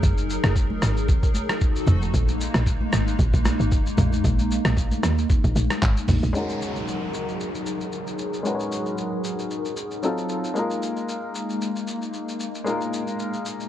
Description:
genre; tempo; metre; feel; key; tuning
amapiano; 114 BPM; 4/4; swing 55% on 16ths; F# major; A4 = 439 Hz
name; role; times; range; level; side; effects
hollow soft pad; sustained chords; 0.0-13.7 s; F3 to A#4; -28 LUFS; equal; ensemble chorus, sidechain pumping, low-pass filter
woody log drum bass; bass; 0.0-6.3 s; F1 to D#2; -23 LUFS; equal; none
trip hop sampler-style drum kit; drums; 0.0-13.7 s; handclaps, hi-hat, kick drum, rim click, shaker, toms; -24 LUFS; equal; none
congas; percussion; 0.0-6.3 s; none; -34 LUFS; right 1 dB; none
clear grand piano; accompaniment; 6.3-13.7 s; Gb3 to C#5; -28 LUFS; left 2 dB; low-pass filter
downlifter; sound effects; 6.3-10.6 s; none; -37 LUFS; equal; none
room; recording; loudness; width
digital ambience; dark, warm production; -21 LUFS; side -12 dB against mid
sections
0.0-6.3 A section; 6.3-13.7 B section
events
drop 0.0-6.3; filter sweep 6.3-13.7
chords
0.0 F#69; 1.6 F7b9; 2.1 A#7sus4; 6.3 F#69; 10.0 F7b9; 10.6 A#7sus4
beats
| 0.03 0.56 1.08 1.61 | 2.14 2.66 3.19 3.72 | 4.24 4.77 5.29 5.82 | 6.35 6.87 7.40 7.93 | 8.45 8.98 9.51 10.03 | 10.56 11.09 11.61 12.14 | 12.66 13.19

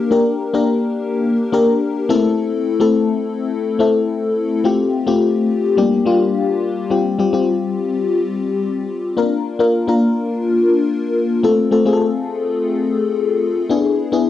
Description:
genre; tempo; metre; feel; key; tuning
pop; 106 BPM; 4/4; straight; unclear; A4 = 440 Hz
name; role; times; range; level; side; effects
FM electric piano with soft pad layer; solo; 0.0-14.3 s; G3 to Bb4; -15 LUFS; left 3 dB; chorus, phaser, cassette tape
room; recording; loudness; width
moderate small room ambience, RT60 0.5 s; home recording on cassette, nothing above 10.4 kHz; -15 LUFS; side -12 dB against mid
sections
0.0-6.9 A section; 6.9-14.3 B section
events
none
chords
0.0 Gm; 2.1 Am; 4.6 Fadd9/A; 5.8 Gm; 6.9 Csus4; 9.2 Bb; 11.4 F; 13.7 E7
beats
| 0.11 0.68 1.25 1.81 | 2.38 2.94 3.51 4.08 | 4.64 5.21 5.77 6.34 | 6.91 7.47 8.04 8.60 | 9.17 9.74 10.30 10.87 | 11.43 12.00 12.57 13.13 | 13.70 14.27

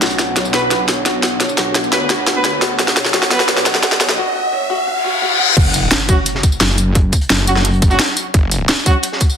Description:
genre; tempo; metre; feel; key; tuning
dark technical drum and bass; 173 BPM; 4/4; straight; unclear; A4 = 441 Hz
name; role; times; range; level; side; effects
dark analog pad; sustained chords; 0.0-4.1 s; B3 to C#5; -25 LUFS; equal; chorus, sidechain pumping
felt-muted upright piano; arpeggios; 0.0-5.5 s; F#4 to F#5; -22 LUFS; left 1 dB; sidechain pumping, low-pass filter, digital delay
snarling distorted saw bass; bass; 0.0-5.9, 8.3-8.7 s; F#1 to D2; -24 LUFS; equal; distortion, overdrive
drum and bass drum kit; drums; 0.0-9.4 s; crash cymbal, hi-hat, snare drum, tambourine; -15 LUFS; equal; overdrive
riser, reverse cymbal and impact; sound effects; 3.3-7.0 s; none; -21 LUFS; left 1 dB; none
mellow brass ensemble; stabs; 0.5-3.4, 6.1-8.9 s; F#3 to B4; -20 LUFS; right 2 dB; low-pass filter, digital delay
crunchy breakbeat drum kit; drums; 5.6-9.3 s; hi-hat, snare drum; -27 LUFS; equal; none
electronic kick drum; drums; 5.6-9.3 s; none; -13 LUFS; equal; overdrive
metallic wobble bass; bass; 6.6-8.0 s; F#1; -15 LUFS; equal; distortion, chorus
room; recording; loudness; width
moderate digital room reverb, RT60 1.2 s; dense, heavily limited modern master, high-pass filter; -12 LUFS; side -8 dB against mid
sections
0.0-5.6 A section; 5.6-9.4 B section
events
build-up 0.0-5.6; drum fill 0.0-4.2; reverse cymbal 4.9-5.6; drop 5.6-9.4; impact 5.6-7.0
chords
0.0 Bmadd9; 5.6 F#5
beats
| 0.02 0.36 0.71 1.06 | 1.41 1.75 2.10 2.44 | 2.79 3.14 3.49 3.83 | 4.18 4.53 4.87 5.22 | 5.57 5.91 6.26 6.61 | 6.95 7.30 7.65 7.99 | 8.34 8.69 9.04

